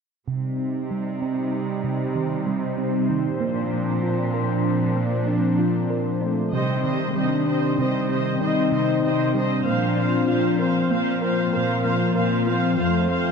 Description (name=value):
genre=cinematic, hybrid orchestral and electronic film score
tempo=96 BPM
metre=5/4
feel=straight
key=C minor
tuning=A4 = 440 Hz
part: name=brassy analog pad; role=sustained chords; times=0.3-13.3 s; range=Eb3 to C5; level=-24 LUFS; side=left 2 dB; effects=chorus, phaser, low-pass filter
part: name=thumb-piano-like synth pluck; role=arpeggios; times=0.3-13.3 s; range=C3 to Bb4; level=-29 LUFS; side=right 4 dB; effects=chorus, low-pass filter, ping-pong delay
part: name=rich symphonic cello section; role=bass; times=0.3-13.3 s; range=F2 to C3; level=-28 LUFS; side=right 4 dB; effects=none
part: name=mellow French horn section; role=sustained chords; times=6.2-13.3 s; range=G3 to Eb4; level=-26 LUFS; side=left 4 dB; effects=low-pass filter
part: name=rich studio viola section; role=accompaniment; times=6.5-13.3 s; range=C5 to F5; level=-27 LUFS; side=right 1 dB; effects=low-pass filter
room=moderate scoring stage reverb, RT60 2.1 s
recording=dark, warm production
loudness=-20 LUFS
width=side -6 dB against mid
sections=0.3-6.5 A section; 6.5-13.3 B section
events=filter sweep 0.3-6.5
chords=0.3 Cm; 3.4 Bbadd9; 6.5 Cm; 9.7 Bbadd9; 12.8 F